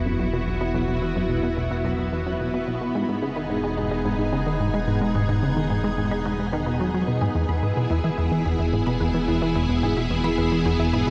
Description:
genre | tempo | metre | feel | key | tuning
ambient, sequencer-driven space music | 109 BPM | 4/4 | straight | E major | A4 = 440 Hz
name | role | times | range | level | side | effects
string machine, full ensemble | sustained chords | 0.0-11.1 s | B3 to G#4 | -28 LUFS | equal | phaser, ensemble chorus
fat analog bass | bass | 0.0-11.1 s | E1 | -33 LUFS | equal | none
plucky analog bass | riff | 0.1-11.1 s | B1 to G#3 | -26 LUFS | equal | tape echo
unison pluck | arpeggios | 0.2-11.0 s | D#4 to B5 | -38 LUFS | equal | none
room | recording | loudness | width
moderate huge ambient reverb, RT60 7.6 s | dark, warm production | -24 LUFS | mono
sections
0.0-11.1 A section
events
none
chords
0.0 Bsus4/E; 3.0 G#m/E; 7.4 E

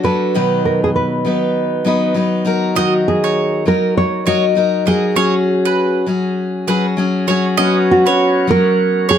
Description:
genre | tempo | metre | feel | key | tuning
acoustic pop | 100 BPM | 4/4 | swing 60% on 16ths | unclear | A4 = 440 Hz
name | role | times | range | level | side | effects
nylon-string guitar | melody | 0.0-9.2 s | F#4 to D#5 | -17 LUFS | right 2 dB | none
picked steel-string acoustic guitar | accompaniment | 0.0-9.2 s | B2 to B4 | -16 LUFS | left 2 dB | none
mandolin | arpeggios | 2.8-9.2 s | B4 to D#5 | -18 LUFS | right 6 dB | none
bright tonewheel organ | sustained chords | 7.6-9.2 s | F#3 to C#5 | -22 LUFS | right 1 dB | slow rotary speaker
room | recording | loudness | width
moderate studio ambience, RT60 0.5 s | close, detailed microphones | -13 LUFS | side -9 dB against mid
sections
0.0-7.6 A section; 7.6-9.2 B section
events
none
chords
0.3 B; 2.5 D#m; 5.2 F#sus2; 7.6 F#sus4

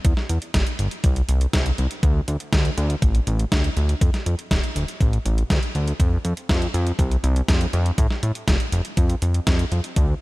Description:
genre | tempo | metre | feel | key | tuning
italo disco | 121 BPM | 4/4 | straight | unclear | A4 = 440 Hz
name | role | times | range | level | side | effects
fat analog bass | bass | 0.0-10.1 s | D1 to A2 | -22 LUFS | equal | none
clean 12-bit digital drum machine | drums | 0.0-10.1 s | hi-hat, snare drum | -28 LUFS | equal | none
electronic kick drum | drums | 0.0-10.1 s | none | -20 LUFS | equal | none
room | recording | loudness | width
little or no reverb | none | -19 LUFS | side -20 dB against mid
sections
0.0-10.2 A section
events
none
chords
none

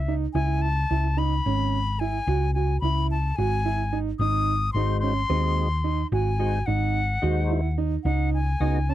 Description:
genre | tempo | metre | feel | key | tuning
progressive instrumental, progressive | 218 BPM (eighths) | 7/8 | straight | unclear | A4 = 436 Hz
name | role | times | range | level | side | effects
silver concert flute | melody | 0.0-8.9 s | E5 to D#6 | -28 LUFS | left 4 dB | none
hollow-body short-scale picked electric bass | bass | 0.0-8.9 s | G#1 to D#2 | -24 LUFS | left 1 dB | none
warm grand piano | arpeggios | 0.1-8.9 s | B#3 to F#4 | -30 LUFS | right 11 dB | none
percussive tonewheel organ | accompaniment | 4.8-8.8 s | C#3 to D#5 | -30 LUFS | left 4 dB | overdrive, chorus vibrato, slow rotary speaker
room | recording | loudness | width
little or no reverb | dry, close 1970s-style studio recording | -22 LUFS | side -13 dB against mid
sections
0.0-8.9 A section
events
none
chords
0.4 C#m7; 4.2 G#7; 8.0 C#9sus4

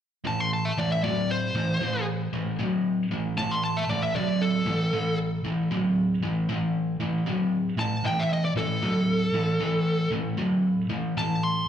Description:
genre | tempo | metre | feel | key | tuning
rock | 77 BPM | 4/4 | swing 66% on 8ths | A minor | A4 = 440 Hz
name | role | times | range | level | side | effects
overdriven electric guitar | riff | 0.2-11.6 s | A2 to F#3 | -25 LUFS | equal | none
fuzz lead guitar | melody | 0.3-11.7 s | A4 to C6 | -28 LUFS | equal | distortion, slapback echo
room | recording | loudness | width
moderate plate reverb, RT60 2.8 s | live gig heard through the venue's PA, club reverb | -24 LUFS | side -9 dB against mid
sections
0.2-11.7 A section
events
none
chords
0.2 A5

